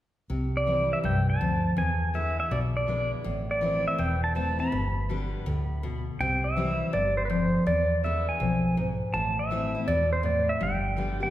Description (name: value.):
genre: honky-tonk and classic country.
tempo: 163 BPM.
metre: 4/4.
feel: swing 65% on 8ths.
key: C major.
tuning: A4 = 437 Hz.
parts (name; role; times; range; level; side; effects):
picked steel-string acoustic guitar; accompaniment; 0.3-11.3 s; E2 to G4; -30 LUFS; left 2 dB; none.
vintage muted fingered electric bass; bass; 0.3-11.2 s; E1 to E2; -30 LUFS; equal; none.
pedal steel guitar; melody; 0.6-11.3 s; B4 to B5; -28 LUFS; right 1 dB; none.
room: wet recital hall reverb, RT60 1.6 s.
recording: recorded in a church or concert hall.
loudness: -24 LUFS.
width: side -13 dB against mid.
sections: 0.3-6.2 A section; 6.2-11.3 B section.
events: none.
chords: 0.3 C; 1.8 E7; 3.3 Am; 4.7 G; 6.2 C; 7.7 E7; 9.1 Am; 10.6 G.